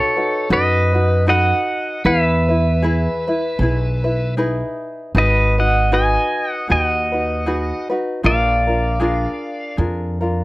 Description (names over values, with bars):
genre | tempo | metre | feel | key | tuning
Hawaiian | 78 BPM | 4/4 | swing 56% on 8ths | E major | A4 = 439 Hz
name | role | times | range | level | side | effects
pedal steel guitar | melody | 0.0-9.8 s | A4 to G#5 | -18 LUFS | equal | none
tenor ukulele | accompaniment | 0.0-10.4 s | D4 to B4 | -22 LUFS | equal | plate reverb
upright bass | bass | 0.5-10.4 s | G#1 to F#2 | -19 LUFS | equal | none
room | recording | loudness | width
light reverb | none | -16 LUFS | side -19 dB against mid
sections
0.0-5.2 A section; 5.2-10.4 B section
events
none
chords
0.0 B7; 2.1 Emaj7; 5.2 G#m7; 8.2 A#7